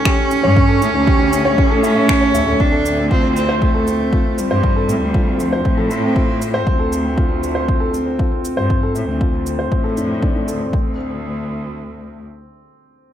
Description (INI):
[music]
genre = piano and strings electronica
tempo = 118 BPM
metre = 4/4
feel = straight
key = D minor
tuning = A4 = 440 Hz
[part]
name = rich cello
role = melody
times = 0.0-6.7 s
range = F3 to D4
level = -19 LUFS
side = right 2 dB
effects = analog delay
[part]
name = dark upright piano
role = riff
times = 0.0-13.1 s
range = C4 to E5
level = -20 LUFS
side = equal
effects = analog delay
[part]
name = rich studio cello section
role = bass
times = 0.0-12.2 s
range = D2 to A2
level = -21 LUFS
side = left 1 dB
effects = sidechain pumping
[part]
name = electronic finger snaps and shaker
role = drums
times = 0.1-10.6 s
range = none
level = -26 LUFS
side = right 1 dB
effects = none
[part]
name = electronic kick drum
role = drums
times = 0.1-10.8 s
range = none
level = -18 LUFS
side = equal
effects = none
[sound]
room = moderate plate reverb, RT60 1.4 s, small room ambience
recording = dreamy mix soaked in reverb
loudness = -14 LUFS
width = side -10 dB against mid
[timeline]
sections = 0.0-2.6 A section; 2.6-10.7 B section; 10.7-13.1 C section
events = drop 0.0-2.6; filter sweep on cello section 2.6-10.7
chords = 0.0 A7/D; 2.6 Dm7; 10.7 Csus2/D